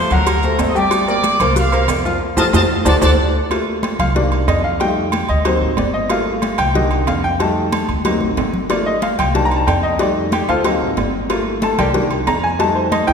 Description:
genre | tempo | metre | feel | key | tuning
latin, salsa | 185 BPM | 4/4 | straight | unclear | A4 = 440 Hz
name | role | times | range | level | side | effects
bright trumpet section | melody | 0.0-3.1 s | Bb4 to D6 | -19 LUFS | right 1 dB | none
bright baby grand piano | accompaniment | 0.0-13.1 s | D3 to Bb5 | -18 LUFS | left 1 dB | none
upright bass | bass | 0.0-13.1 s | G1 to F2 | -21 LUFS | equal | none
agogo bells and timbales | percussion | 0.1-13.1 s | none | -23 LUFS | right 5 dB | none
congas | percussion | 0.1-13.1 s | none | -26 LUFS | left 2 dB | none
maracas | percussion | 0.1-3.1 s | none | -33 LUFS | right 8 dB | none
cowbell | percussion | 0.3-13.1 s | none | -24 LUFS | left 3 dB | none
room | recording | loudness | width
wet concert hall reverb, RT60 1.8 s | recorded in a church or concert hall | -14 LUFS | side -6 dB against mid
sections
0.0-3.5 A section; 3.5-13.1 B section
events
drum fill 2.2-3.5, 8.1-8.7; band accent 2.2-3.5; grand piano solo 3.5-13.1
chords
0.3 D7b13; 0.9 Gm; 1.6 C7sus4; 2.2 F7; 2.9 D7; 3.5 Fadd11; 4.2 Cm7; 4.8 F7; 5.5 D7b9b13; 6.1 Gm7; 6.8 Cm7; 7.4 F7; 8.1 D7b9b13; 8.7 Gm7; 9.4 Cm7; 10.0 F7; 10.7 D7b9b13; 11.3 Gm7; 11.9 Cm7; 12.6 F7

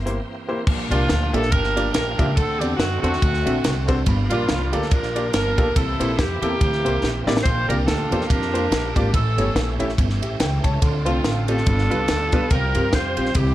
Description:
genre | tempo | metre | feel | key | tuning
uptempo gospel | 142 BPM | 4/4 | swing 57% on 8ths | unclear | A4 = 441 Hz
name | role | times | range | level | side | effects
clear studio string section | sustained chords | 0.0-0.7 s | E5 to C6 | -43 LUFS | left 2 dB | none
overdriven tonewheel organ | sustained chords | 0.0-13.5 s | D3 to G4 | -32 LUFS | right 3 dB | chorus vibrato, fast rotary speaker
upright bass | bass | 0.0-13.5 s | G1 to G2 | -24 LUFS | equal | none
clear baby grand piano | accompaniment | 0.1-13.5 s | G2 to A5 | -26 LUFS | equal | none
crisp fusion drum kit | drums | 0.1-13.5 s | crash cymbal, hi-hat, kick drum, ride cymbal, snare drum | -23 LUFS | equal | none
mellow saxophone section | melody | 0.9-13.5 s | A3 to C5 | -24 LUFS | right 1 dB | none
room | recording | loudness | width
light reverb, small room ambience | none | -18 LUFS | side -14 dB against mid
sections
0.7-13.5 A section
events
break 0.2-0.7; drum fill 7.0-7.4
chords
0.0 C7; 0.7 Bb6; 2.4 D7; 4.1 Gm7; 5.8 C7; 7.4 Bb6; 9.1 A7; 10.8 Dm7; 11.7 G7; 12.5 Csus4

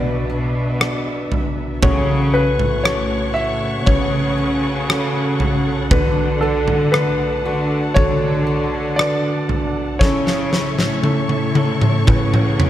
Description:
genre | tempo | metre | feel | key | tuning
pop ballad | 59 BPM | 4/4 | straight | D major | A4 = 440 Hz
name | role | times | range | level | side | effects
warm grand piano | melody | 0.0-12.7 s | A4 to E5 | -23 LUFS | left 1 dB | ping-pong delay
mellow tine electric piano | accompaniment | 0.0-12.7 s | C#3 to D5 | -24 LUFS | right 3 dB | phaser
warm symphonic string section | sustained chords | 0.0-12.7 s | D4 to C#6 | -28 LUFS | left 2 dB | none
fingerpicked steel-string acoustic guitar | arpeggios | 0.0-12.7 s | B2 to A4 | -30 LUFS | left 3 dB | none
rich symphonic cello section | bass | 0.0-12.7 s | A2 to D3 | -22 LUFS | equal | none
huge arena drum kit | drums | 0.8-12.7 s | kick drum, rim click, snare drum, toms | -19 LUFS | equal | none
room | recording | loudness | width
light reverb | dark, warm production | -16 LUFS | side -12 dB against mid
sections
0.0-12.7 A section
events
drum fill 10.0-12.7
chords
0.0 Bm; 1.8 F#m; 5.9 D; 10.0 A

